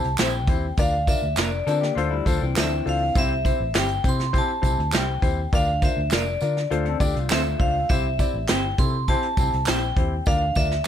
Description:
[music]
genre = uptempo 1960s-style soul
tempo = 101 BPM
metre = 4/4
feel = straight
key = C mixolydian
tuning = A4 = 440 Hz
[part]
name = vibraphone with hard mallets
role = melody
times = 0.0-10.8 s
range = D5 to C6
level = -26 LUFS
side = equal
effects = slapback echo, plate reverb
[part]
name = warm concert grand piano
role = accompaniment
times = 0.0-10.9 s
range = C3 to D5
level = -29 LUFS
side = left 6 dB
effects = plate reverb
[part]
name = vintage muted fingered electric bass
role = bass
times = 0.0-10.8 s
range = F1 to D3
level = -26 LUFS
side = equal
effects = none
[part]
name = vintage brush drum kit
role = drums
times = 0.0-10.8 s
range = hi-hat, kick drum, snare drum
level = -24 LUFS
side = right 1 dB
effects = none
[part]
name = electric guitar through a small old amp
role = stabs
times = 0.2-10.9 s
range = F3 to C5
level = -31 LUFS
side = right 5 dB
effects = lush chorus, plate reverb
[part]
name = handclaps and tambourine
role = percussion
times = 0.2-10.9 s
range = none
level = -34 LUFS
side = right 5 dB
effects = none
[part]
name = electric guitar through a small old amp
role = riff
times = 1.7-3.1, 6.7-7.9 s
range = E3 to A4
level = -30 LUFS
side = left 9 dB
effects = none
[sound]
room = little or no reverb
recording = none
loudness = -20 LUFS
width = side -9 dB against mid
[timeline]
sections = 0.0-10.9 A section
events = none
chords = 0.0 C; 0.8 Bb/D; 2.0 Dm7; 3.2 C; 5.5 Bb/D; 6.7 Dm7; 7.9 C; 10.3 Bb/D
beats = 0.19 | 0.78 1.38 1.97 2.56 | 3.15 3.75 4.34 4.93 | 5.53 6.12 6.71 7.31 | 7.90 8.49 9.09 9.68 | 10.27 10.87

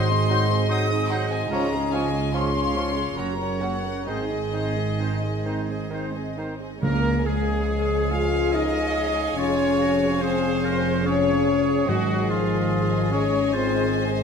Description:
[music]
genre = classical, slow romantic movement for symphony orchestra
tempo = 64-74 BPM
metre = 3/4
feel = rubato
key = Db major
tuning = A4 = 444 Hz
[part]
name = warm symphonic violin section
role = melody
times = 0.0-14.2 s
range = F4 to Eb6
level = -32 LUFS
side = left 7 dB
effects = none
[part]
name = clear clarinet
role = second line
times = 0.0-14.1 s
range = Db4 to Bb4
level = -34 LUFS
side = equal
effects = none
[part]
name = clear oboe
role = second line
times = 0.0-14.1 s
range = F4 to F5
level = -35 LUFS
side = right 3 dB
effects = none
[part]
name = mellow concert flute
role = second line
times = 0.0-14.1 s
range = F4 to Eb6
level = -33 LUFS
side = left 1 dB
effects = none
[part]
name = warm symphonic violin section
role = second line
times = 0.0-14.2 s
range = F4 to Ab5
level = -36 LUFS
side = left 3 dB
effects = none
[part]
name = clear bassoon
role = accompaniment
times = 0.0-6.5 s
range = Eb3 to Gb3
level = -36 LUFS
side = right 3 dB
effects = none
[part]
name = dark studio viola section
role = accompaniment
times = 0.0-14.2 s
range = Ab3 to Eb5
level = -34 LUFS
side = right 2 dB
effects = none
[part]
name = dark trombone section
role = sustained chords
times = 0.0-14.2 s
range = Ab2 to Ab3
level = -32 LUFS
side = right 4 dB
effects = none
[part]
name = mellow French horn section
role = sustained chords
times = 0.0-14.2 s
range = F3 to Gb4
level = -26 LUFS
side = left 6 dB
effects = none
[part]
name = clear trumpet section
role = stabs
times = 0.0-14.2 s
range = F4 to F5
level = -32 LUFS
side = right 2 dB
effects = none
[part]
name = warm studio double bass section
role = bass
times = 0.0-14.2 s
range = F1 to Db2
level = -29 LUFS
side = right 4 dB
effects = none
[part]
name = warm symphonic cello section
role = bass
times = 0.0-14.2 s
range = Db2 to Db3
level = -31 LUFS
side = right 3 dB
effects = none
[part]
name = timpani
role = percussion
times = 6.8-8.1, 11.9-13.1 s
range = Ab2 to Db3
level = -29 LUFS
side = right 1 dB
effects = none
[sound]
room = moderate concert hall reverb, RT60 1.9 s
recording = none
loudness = -21 LUFS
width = side -6 dB against mid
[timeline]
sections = 0.0-6.8 A section; 6.8-14.2 B section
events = none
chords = 0.0 Ab7; 1.5 Db; 3.2 Gb; 4.1 Ab; 6.8 Db; 9.4 Db/F; 11.9 Ab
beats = 0.71 | 1.52 2.34 3.18 | 4.07 5.00 5.92 | 6.82 7.69 8.53 | 9.37 10.21 11.06 | 11.89 12.71 13.54

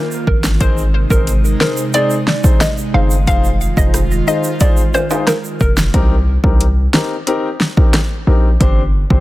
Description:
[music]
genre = dancehall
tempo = 90 BPM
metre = 4/4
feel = straight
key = C minor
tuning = A4 = 440 Hz
[part]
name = hollow square pluck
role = melody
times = 0.0-5.7 s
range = Bb4 to F5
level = -20 LUFS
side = equal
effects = chorus, digital delay
[part]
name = airy breathy pad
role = sustained chords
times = 0.0-5.9 s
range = C3 to F4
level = -23 LUFS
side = right 2 dB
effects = chorus, sidechain pumping
[part]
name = egg shaker and timbales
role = percussion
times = 0.1-5.9 s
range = none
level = -26 LUFS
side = right 6 dB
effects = none
[part]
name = hard-hitting 808-style bass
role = bass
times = 0.3-9.2 s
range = F1 to C2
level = -15 LUFS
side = equal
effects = none
[part]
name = deep house drum kit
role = drums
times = 0.3-9.2 s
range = hi-hat, kick drum, rim click, snare drum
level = -14 LUFS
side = equal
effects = overdrive
[part]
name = warm concert grand piano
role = accompaniment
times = 0.6-9.2 s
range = C4 to C5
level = -22 LUFS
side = left 3 dB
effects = sidechain pumping
[sound]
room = digital ambience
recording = dense, heavily limited modern master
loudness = -12 LUFS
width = side -17 dB against mid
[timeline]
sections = 0.0-5.9 A section; 5.9-9.2 B section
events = none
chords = 0.0 Bbsus4; 0.6 Ab; 3.3 Fm7; 5.9 Cm7; 8.6 Gsus4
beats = | 0.61 1.27 1.94 2.61 | 3.27 3.94 4.61 5.27 | 5.94 6.61 7.27 7.94 | 8.61

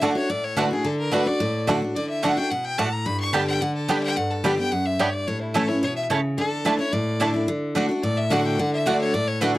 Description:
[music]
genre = bluegrass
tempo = 217 BPM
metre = 4/4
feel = straight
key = D major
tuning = A4 = 440 Hz
[part]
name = bluegrass banjo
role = melody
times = 0.0-7.3 s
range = G3 to E4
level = -25 LUFS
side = right 3 dB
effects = none
[part]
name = clear fiddle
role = melody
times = 0.0-9.6 s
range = E4 to C#6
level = -27 LUFS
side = left 2 dB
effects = none
[part]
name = picked steel-string acoustic guitar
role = accompaniment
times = 0.0-9.6 s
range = F#2 to G4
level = -23 LUFS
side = equal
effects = none
[part]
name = mandolin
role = stabs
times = 0.0-9.5 s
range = A3 to A5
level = -25 LUFS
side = right 4 dB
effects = none
[sound]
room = little or no reverb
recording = dry, gritty hardware recording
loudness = -21 LUFS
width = side -16 dB against mid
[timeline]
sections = 0.0-7.5 A section; 7.5-9.6 A section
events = none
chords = 0.0 D; 3.1 G; 5.3 A; 6.4 Dsus2; 7.5 D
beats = 0.03 0.30 0.58 | 0.85 1.13 1.41 1.68 | 1.96 2.23 2.51 2.79 | 3.06 3.34 3.62 3.89 | 4.17 4.45 4.72 5.00 | 5.27 5.55 5.83 6.10 | 6.38 6.66 6.93 7.21 | 7.48 7.76 8.04 8.31 | 8.59 8.87 9.14 9.42

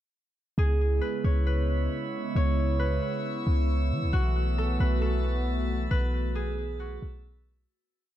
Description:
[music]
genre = hip hop, atmospheric cloud-rap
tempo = 135 BPM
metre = 4/4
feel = half-time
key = C# minor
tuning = A4 = 440 Hz
[part]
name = concert harp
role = melody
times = 0.6-8.2 s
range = F#4 to C#5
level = -34 LUFS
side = right 1 dB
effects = ping-pong delay
[part]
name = hollow soft pad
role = sustained chords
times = 0.6-7.7 s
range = C#3 to F#4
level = -33 LUFS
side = equal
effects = chorus
[part]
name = clean 808-style bass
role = bass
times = 0.6-7.7 s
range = B1 to E3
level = -26 LUFS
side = equal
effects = none
[part]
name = drifting glass-harmonics texture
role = texture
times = 1.2-7.7 s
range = B4 to A6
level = -38 LUFS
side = right 3 dB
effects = chorus, built-in reverb
[sound]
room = digital ambience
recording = dark, warm production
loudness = -25 LUFS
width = side -12 dB against mid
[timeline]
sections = 0.6-7.7 breakdown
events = fade-out 5.9-7.7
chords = 0.6 C#m7; 4.1 B7sus4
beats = | 0.58 1.02 1.47 1.91 | 2.36 2.80 3.25 3.69 | 4.13 4.58 5.02 5.47 | 5.91 6.36 6.80 7.25

